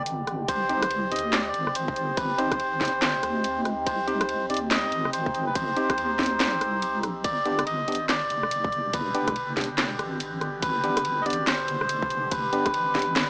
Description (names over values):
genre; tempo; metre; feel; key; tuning
deep dubstep; 142 BPM; 4/4; swing 62% on 16ths, half-time; C harmonic minor; A4 = 444 Hz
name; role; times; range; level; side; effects
melodica; melody; 0.0-13.3 s; B4 to Eb5; -30 LUFS; equal; dub echo
overtone-sweeping drone; sustained chords; 0.0-13.3 s; B2 to G4; -36 LUFS; equal; chorus, built-in reverb
deep soft wobble bass; bass; 0.0-13.3 s; F1 to Eb2; -37 LUFS; equal; chorus, tube saturation
garage drum kit; drums; 0.1-13.3 s; handclaps, hi-hat, ride cymbal, rim click, snare drum; -31 LUFS; equal; studio ambience
electronic kick drum; drums; 0.5-13.1 s; none; -35 LUFS; equal; studio ambience
tine electric piano; stabs; 0.7-13.0 s; B3 to G4; -34 LUFS; equal; lush chorus, dub echo
room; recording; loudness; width
moderate spring reverb, RT60 1.5 s; dry, gritty hardware recording, transformer saturation, small speaker sound; -26 LUFS; mono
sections
0.0-13.3 A section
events
none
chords
0.5 Cm; 7.2 G